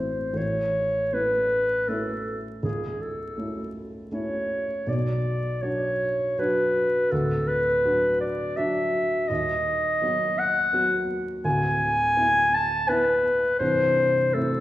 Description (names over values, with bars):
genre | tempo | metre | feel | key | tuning
classical, romantic duo for clarinet and grand piano | 82 BPM | 3/4 | rubato | A major | A4 = 440 Hz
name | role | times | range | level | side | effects
mellow clarinet | melody | 0.0-14.6 s | G#4 to A5 | -23 LUFS | equal | none
dark baby grand piano | accompaniment | 0.0-14.6 s | C1 to F#4 | -28 LUFS | equal | none
room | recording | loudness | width
wet recital hall reverb, RT60 1.4 s | heard from further back in the room, vinyl crackle | -22 LUFS | side -15 dB against mid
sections
0.4-14.6 A section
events
none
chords
0.4 A; 2.6 A/C#; 4.9 Bm; 7.1 Bm/D; 9.3 B/D#; 11.4 E7/D; 13.6 Am/C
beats
| 0.36 1.13 1.89 | 2.64 3.38 4.12 | 4.88 5.62 6.38 | 7.11 7.84 8.57 | 9.29 10.01 10.73 | 11.45 12.17 12.89 | 13.61 14.35